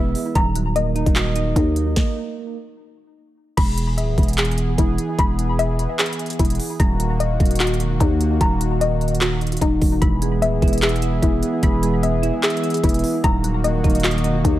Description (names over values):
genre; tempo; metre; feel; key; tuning
hip hop, trap; 149 BPM; 4/4; half-time; unclear; A4 = 436 Hz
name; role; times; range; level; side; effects
soft electric-piano-like synth keys; accompaniment; 0.0-2.6, 10.0-14.6 s; Eb3 to E5; -24 LUFS; right 3 dB; chorus, tremolo
soft round pluck; arpeggios; 0.0-14.6 s; Eb4 to B5; -24 LUFS; left 3 dB; chorus, tape echo
growling 808-style bass; bass; 0.0-14.6 s; Eb1 to Eb2; -22 LUFS; equal; none
trap drum kit; drums; 0.2-14.5 s; crash cymbal, handclaps, hi-hat, kick drum, snare drum; -20 LUFS; equal; overdrive
warm analog pad; sustained chords; 3.6-14.6 s; Eb3 to G#4; -26 LUFS; right 1 dB; chorus
room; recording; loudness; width
digital ambience; none; -17 LUFS; side -14 dB against mid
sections
0.0-3.6 A section; 3.6-14.6 B section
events
stop 2.0-3.6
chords
0.4 Ebm; 3.6 E; 6.8 Ebm; 10.0 E; 13.2 Ebm